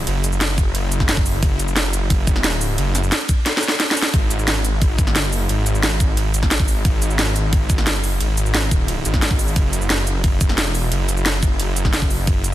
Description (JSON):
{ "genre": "dark technical drum and bass", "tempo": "177 BPM", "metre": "4/4", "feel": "straight", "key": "unclear", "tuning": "A4 = 440 Hz", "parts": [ { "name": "wide detuned saw bass", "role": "bass", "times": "0.0-12.5 s", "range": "D#1 to G#1", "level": "-20 LUFS", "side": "equal", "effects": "chorus" }, { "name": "drum and bass drum kit", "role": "drums", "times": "0.1-12.5 s", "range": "hi-hat, ride cymbal, shaker, snare drum", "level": "-21 LUFS", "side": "equal", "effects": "none" }, { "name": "electronic kick drum", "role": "drums", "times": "0.6-12.3 s", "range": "none", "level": "-18 LUFS", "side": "equal", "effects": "none" } ], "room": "little or no reverb", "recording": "dense, heavily limited modern master", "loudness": "-16 LUFS", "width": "side -14 dB against mid", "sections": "0.0-12.5 A section", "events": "drum fill 3.5-4.1", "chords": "none" }